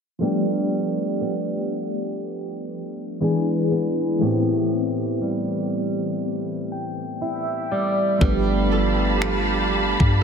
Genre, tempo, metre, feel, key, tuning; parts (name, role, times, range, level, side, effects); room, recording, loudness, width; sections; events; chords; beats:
contemporary R&B; 60 BPM; 4/4; swing 58% on 16ths; A4 = 440 Hz
soft electric-piano-like synth keys; accompaniment; 0.2-10.2 s; E3 to G5; -24 LUFS; left 2 dB; chorus, phaser
flamenco guitar; arpeggios; 0.2-10.2 s; A2 to A4; -26 LUFS; right 3 dB; analog delay
warm studio string section; sustained chords; 8.2-10.2 s; G4 to B5; -24 LUFS; right 2 dB; sidechain pumping
clean 808-style bass; bass; 8.2-10.2 s; G1 to G2; -23 LUFS; equal
trap drum kit; drums; 8.2-10.2 s; finger snaps, kick drum; -23 LUFS; left 1 dB
wet huge ambient reverb, RT60 3.9 s; dreamy mix soaked in reverb, low-pass filter; -20 LUFS; side -6 dB against mid
0.2-8.2 A section; 8.2-10.2 B section
filter sweep 0.2-8.2; synth keys fill 6.2-8.2
0.2 G9; 3.2 E7; 4.2 Am7; 8.2 G9
| 0.21 1.21 2.21 3.21 | 4.21 5.21 6.21 7.21 | 8.21 9.21 10.21